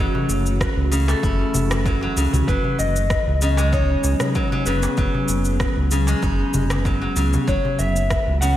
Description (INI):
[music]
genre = organic downtempo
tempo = 96 BPM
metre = 4/4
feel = swing 53% on 16ths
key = unclear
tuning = A4 = 440 Hz
[part]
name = electric slide guitar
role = melody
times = 0.0-8.6 s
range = A4 to F#5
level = -27 LUFS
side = left 2 dB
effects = digital delay
[part]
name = ethereal airy pad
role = sustained chords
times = 0.0-8.6 s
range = E3 to G#4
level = -29 LUFS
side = left 1 dB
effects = ensemble chorus, built-in reverb, phaser, sidechain pumping
[part]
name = steel-string zither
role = arpeggios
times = 0.0-8.6 s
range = C#3 to E4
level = -24 LUFS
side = left 1 dB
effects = digital delay
[part]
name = round analog bass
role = bass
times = 0.0-8.6 s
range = F#1 to C#2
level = -21 LUFS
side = equal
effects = none
[part]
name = darbuka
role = percussion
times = 0.1-7.9 s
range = none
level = -28 LUFS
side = left 2 dB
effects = none
[part]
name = electronic shaker and rim click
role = drums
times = 0.3-8.6 s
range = none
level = -29 LUFS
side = equal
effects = overdrive, gated reverb
[part]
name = electronic kick drum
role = drums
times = 0.6-8.2 s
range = none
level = -24 LUFS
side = equal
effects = overdrive
[sound]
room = light reverb, digital ambience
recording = bright 1980s-style digital production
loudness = -18 LUFS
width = side -12 dB against mid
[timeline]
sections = 0.0-8.6 A section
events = none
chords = 0.0 F#m7; 2.5 G#m7/F#; 7.5 F#m7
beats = 0.61 1.23 1.86 | 2.48 3.11 3.73 4.36 | 4.98 5.61 6.23 6.86 | 7.48 8.11